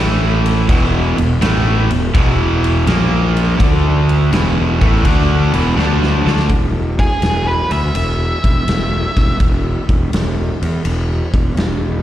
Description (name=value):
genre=blues rock power trio and southern rock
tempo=83 BPM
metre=4/4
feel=swing 68% on 8ths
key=unclear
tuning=A4 = 439 Hz
part: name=cranked stack guitar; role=riff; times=0.0-6.5 s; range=E2 to D4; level=-16 LUFS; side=equal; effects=overdrive
part: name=fuzz fingered electric bass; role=bass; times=0.0-12.0 s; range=E1 to E2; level=-16 LUFS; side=equal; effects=overdrive
part: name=huge arena drum kit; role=drums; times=0.5-11.8 s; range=kick drum, ride cymbal, snare drum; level=-18 LUFS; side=equal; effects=none
part: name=octave-fuzz lead guitar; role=melody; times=7.0-9.4 s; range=G#4 to E5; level=-21 LUFS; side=equal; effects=distortion, slapback echo, tape echo
room=small room ambience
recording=live gig heard through the venue's PA, recital hall reverb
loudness=-12 LUFS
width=side -12 dB against mid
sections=0.0-6.5 A section; 6.5-12.0 B section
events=drum fill 5.8-6.5; lead electric guitar solo 6.5-12.0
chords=0.0 A5; 0.7 E5; 2.9 A#5; 3.6 D5; 4.3 E5; 6.5 N.C.